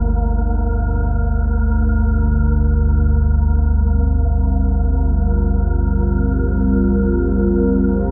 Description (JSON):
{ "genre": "dark ambient drone", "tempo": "free time", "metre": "none", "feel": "none", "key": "G minor", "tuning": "A4 = 442 Hz", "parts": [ { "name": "deep rumbling drone", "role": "drone", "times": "0.0-8.1 s", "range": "G1 to D2", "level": "-18 LUFS", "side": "equal", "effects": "built-in reverb, subtle chorus" }, { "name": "wind-like tuned noise texture", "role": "texture", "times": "0.0-8.1 s", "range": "Bb3 to Bb4", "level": "-32 LUFS", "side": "equal", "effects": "built-in reverb" }, { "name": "dark analog pad", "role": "sustained chords", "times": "3.5-8.1 s", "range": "G3 to Bb4", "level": "-22 LUFS", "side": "equal", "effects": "chorus" } ], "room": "light reverb", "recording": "none", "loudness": "-17 LUFS", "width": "mono", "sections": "0.0-8.1 A section", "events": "none", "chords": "0.0 Gm", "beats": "free time" }